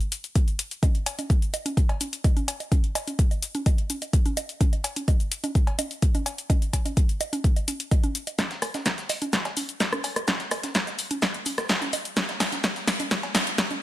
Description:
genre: house.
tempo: 127 BPM.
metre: 4/4.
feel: straight.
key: none.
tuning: none.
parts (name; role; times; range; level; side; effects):
deep house drum kit; drums; 0.0-13.8 s; cabasa, hi-hat, rim click, snare drum; -27 LUFS; left 1 dB; none.
electronic kick drum; drums; 0.4-13.7 s; none; -22 LUFS; equal; high-pass filter on kick, high-pass filter on room.
bongos, congas and cowbell; percussion; 0.8-13.8 s; none; -33 LUFS; right 3 dB; sidechain pumping on perc.
breakbeat sampler-style drum kit; drums; 8.4-13.7 s; hi-hat, shaker, snare drum; -36 LUFS; equal; none.
room: light reverb, digital ambience.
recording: none.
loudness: -23 LUFS.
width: side -14 dB against mid.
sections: 0.0-8.4 A section; 8.4-13.8 B section.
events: build-up 8.4-13.8; drum fill 8.4-13.8.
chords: none.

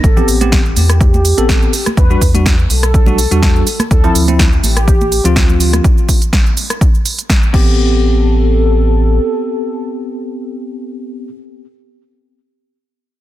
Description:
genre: deep house.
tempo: 124 BPM.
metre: 4/4.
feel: swing 54% on 16ths.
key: A minor.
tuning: A4 = 442 Hz.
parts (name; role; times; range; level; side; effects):
mellow horn-like synth lead; melody; 0.0-11.3 s; G4 to B4; -20 LUFS; equal; analog chorus, ping-pong delay.
bell-like tine electric piano; stabs; 0.0-11.3 s; F3 to A4; -18 LUFS; equal; medium stereo tremolo, sidechain pumping, ping-pong delay.
round analog bass; bass; 0.0-9.2 s; A1 to E2; -14 LUFS; equal; sidechain pumping.
deep house drum kit; drums; 0.0-7.6 s; crash cymbal, hi-hat, rim click, shaker, snare drum; -18 LUFS; right 1 dB; none.
electronic kick drum; drums; 0.0-7.6 s; none; -12 LUFS; equal; none.
congas; percussion; 0.2-5.8 s; none; -23 LUFS; right 3 dB; sidechain pumping on perc.
room: digital ambience.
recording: dense, heavily limited modern master.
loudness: -10 LUFS.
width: side -14 dB against mid.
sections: 0.0-7.8 A section; 7.8-11.7 B section.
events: drop 0.0-7.8.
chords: 0.0 Am9; 1.7 Em9; 3.7 Dm9; 5.8 N.C.; 7.5 Am9.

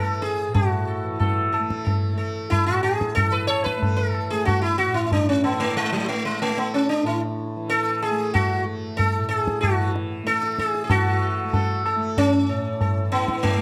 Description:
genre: indian classical, Hindustani.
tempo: 93 BPM.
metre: 4/4.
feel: straight.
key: A raga bilaval.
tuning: A4 = 441 Hz.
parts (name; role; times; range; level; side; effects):
sitar; melody; 0.0-13.6 s; F#3 to C#5; -25 LUFS; equal; none.
tanpura; drone; 0.0-13.6 s; A2 to A3; -32 LUFS; equal; none.
tabla; percussion; 0.2-13.6 s; none; -27 LUFS; equal; none.
room: light reverb.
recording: close, detailed microphones.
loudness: -23 LUFS.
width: mono.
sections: 0.0-10.9 A section; 10.9-13.6 B section.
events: speeding up 0.0-13.6.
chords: none.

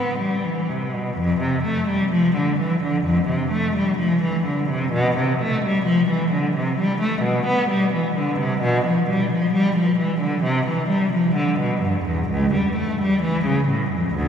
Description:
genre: classical, baroque-style suite movement for unaccompanied cello.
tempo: 65 BPM.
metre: 4/4.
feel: rubato.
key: unclear.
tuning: A4 = 440 Hz.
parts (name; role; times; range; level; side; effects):
rich cello; solo; 0.0-14.3 s; C#2 to B3; -18 LUFS; equal; none.
room: wet cathedral reverb, RT60 5.4 s.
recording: heard from further back in the room.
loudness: -18 LUFS.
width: side -8 dB against mid.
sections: 0.0-1.2 A section; 1.2-14.3 A section.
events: none.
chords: none.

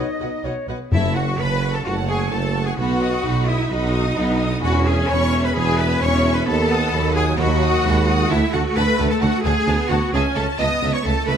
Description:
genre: cinematic, heroic adventure film score.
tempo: 130 BPM.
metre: 4/4.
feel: straight.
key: B mixolydian.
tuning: A4 = 440 Hz.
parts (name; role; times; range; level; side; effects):
rich symphonic violin section; melody; 0.0-11.4 s; D#5 to D#6; -28 LUFS; equal; none.
dark clarinet; second line; 0.0-0.8 s; B4 to D#5; -32 LUFS; left 3 dB; none.
warm symphonic violin section; second line; 0.0-11.4 s; C#5 to D#6; -29 LUFS; left 3 dB; none.
rich symphonic viola section; accompaniment; 0.0-11.4 s; F#3 to B4; -25 LUFS; equal; none.
clear symphonic double bass section; bass; 0.0-11.4 s; F#1 to E2; -23 LUFS; right 2 dB; none.
rich studio cello section; bass; 0.0-11.4 s; B2 to D#5; -23 LUFS; equal; none.
mellow tuba; bass; 0.9-11.4 s; E1 to D#2; -24 LUFS; right 4 dB; none.
timpani; percussion; 0.9-1.6 s; F#2; -22 LUFS; left 3 dB; none.
room: light reverb.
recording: none.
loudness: -17 LUFS.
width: side -8 dB against mid.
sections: 0.9-11.4 A section.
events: none.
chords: 0.0 B; 0.9 F#m; 2.8 B; 4.6 E; 6.5 B/D#; 8.3 D; 10.1 A/C#.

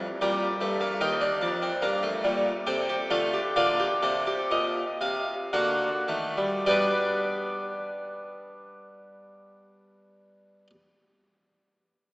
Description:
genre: classical, baroque-style 4-part fugue for harpsichord.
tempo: 50-76 BPM.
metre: 3/4.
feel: straight.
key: unclear.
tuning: A4 = 442 Hz.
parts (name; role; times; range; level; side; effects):
harpsichord; solo; 0.0-10.7 s; Eb2 to Bb5; -25 LUFS; equal; none.
room: wet church reverb, RT60 3.4 s.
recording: AM radio sound.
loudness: -24 LUFS.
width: side -25 dB against mid.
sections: 0.0-6.7 A section; 6.7-10.2 B section.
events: slowing down 0.0-6.7.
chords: 0.2 Gm/Bb; 1.0 Eb; 2.7 C5; 3.6 Gm; 5.5 D; 6.7 G.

